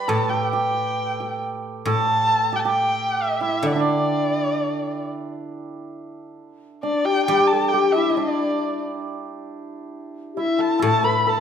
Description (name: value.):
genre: chinese traditional, Chinese chamber ensemble.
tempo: 67 BPM.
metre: 2/4.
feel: rubato.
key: D zhi mode.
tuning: A4 = 442 Hz.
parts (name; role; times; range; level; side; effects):
dark erhu; melody; 0.0-11.4 s; D5 to B5; -23 LUFS; left 2 dB; none.
hammered dulcimer; second line; 0.0-11.4 s; D4 to D5; -25 LUFS; right 5 dB; none.
guzheng; accompaniment; 0.0-11.4 s; A2 to G3; -28 LUFS; left 2 dB; none.
mellow low xiao; second line; 6.8-11.4 s; D4 to B4; -22 LUFS; left 6 dB; none.
room: wet recital hall reverb, RT60 1.4 s.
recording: minimal, uncompressed stereo recording.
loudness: -19 LUFS.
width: side -8 dB against mid.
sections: 0.0-5.5 A section; 5.5-11.4 B section.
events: none.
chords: none.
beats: | 0.10 0.98 | 1.87 2.76 | 3.65 4.56 | 5.48 6.39 | 7.29 8.18 | 9.07 9.95 | 10.83.